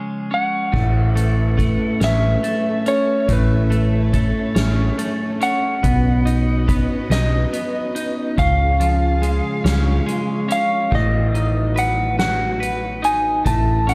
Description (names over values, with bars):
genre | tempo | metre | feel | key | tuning
post-rock | 47 BPM (dotted quarters) | 6/8 | straight | A lydian | A4 = 441 Hz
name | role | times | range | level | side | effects
twelve-string electric guitar | arpeggios | 0.0-13.9 s | A2 to B4 | -25 LUFS | equal | lush chorus, tape echo
electric slide guitar | melody | 0.3-13.9 s | B4 to A5 | -24 LUFS | equal | tape echo
warm symphonic string section | sustained chords | 0.7-13.9 s | C#3 to E#5 | -32 LUFS | equal | none
hollow-body short-scale fingered electric bass | bass | 0.7-13.9 s | A1 to C#2 | -21 LUFS | equal | none
soft-mallet drum kit | drums | 0.7-13.9 s | crash cymbal, hi-hat, kick drum, snare drum | -27 LUFS | equal | none
room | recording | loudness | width
moderate large studio reverb, RT60 1.0 s, small room ambience | none | -19 LUFS | mono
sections
0.7-10.9 A section; 10.9-13.9 B section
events
none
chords
0.0 C#; 0.7 Aadd9; 5.8 Badd9; 8.4 C#; 10.9 B/A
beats
| 0.74 2.02 | 3.29 4.57 | 5.84 7.11 | 8.38 9.65 | 10.92 12.19 | 13.46